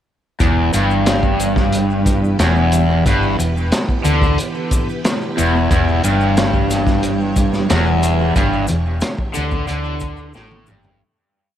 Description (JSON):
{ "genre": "psychedelic rock", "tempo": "90 BPM", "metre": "4/4", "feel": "straight", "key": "E minor", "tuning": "A4 = 440 Hz", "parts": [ { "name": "string machine, violins", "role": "sustained chords", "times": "0.4-11.0 s", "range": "E3 to C#5", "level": "-27 LUFS", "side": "right 2 dB", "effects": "ensemble chorus" }, { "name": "overdriven semi-hollow guitar", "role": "riff", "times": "0.4-11.0 s", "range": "E2 to D3", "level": "-17 LUFS", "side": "equal", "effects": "harmonic tremolo, analog delay" }, { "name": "hollow-body short-scale fingered electric bass", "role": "bass", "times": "0.4-11.0 s", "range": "E1 to D2", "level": "-20 LUFS", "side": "equal", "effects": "none" }, { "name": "crunchy breakbeat drum kit", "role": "drums", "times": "0.4-11.0 s", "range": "hi-hat, kick drum, snare drum, toms", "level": "-19 LUFS", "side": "equal", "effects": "analog delay" }, { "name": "maracas", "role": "percussion", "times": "0.4-10.9 s", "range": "none", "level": "-32 LUFS", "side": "left 6 dB", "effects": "none" } ], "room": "light reverb, studio ambience", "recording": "echo-heavy mix", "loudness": "-14 LUFS", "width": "side -10 dB against mid", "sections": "0.4-11.0 riff", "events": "fade-out 8.4-11.0; drum fill 10.3-11.0", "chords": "0.4 Em" }